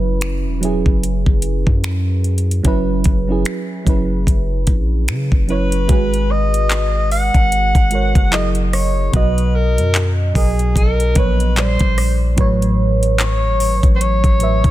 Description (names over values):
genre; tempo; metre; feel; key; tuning
contemporary R&B; 74 BPM; 4/4; swing 58% on 16ths; unclear; A4 = 435 Hz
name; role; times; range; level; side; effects
mellow FM electric piano; accompaniment; 0.0-14.7 s; A2 to E5; -20 LUFS; right 3 dB; chorus
long sustained 808-style bass; bass; 0.0-14.7 s; E1 to C#3; -18 LUFS; equal; none
smooth R&B drum kit; drums; 0.2-14.7 s; finger snaps, handclaps, hi-hat, kick drum, rim click; -17 LUFS; equal; soft clipping on snare
warm alto saxophone; melody; 5.5-14.7 s; G#4 to F#5; -21 LUFS; left 1 dB; tape echo
room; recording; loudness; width
little or no reverb; dense, heavily limited modern master; -14 LUFS; side -15 dB against mid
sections
0.0-5.9 A section; 5.9-14.7 B section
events
none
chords
0.0 F#7sus4; 5.9 G#m9; 8.3 F#13; 9.1 Bmaj7; 11.6 A#69; 12.4 A69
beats
0.22 1.03 1.84 | 2.65 3.46 4.27 5.08 | 5.89 6.70 7.51 8.32 | 9.14 9.95 10.76 11.57 | 12.38 13.19 14.00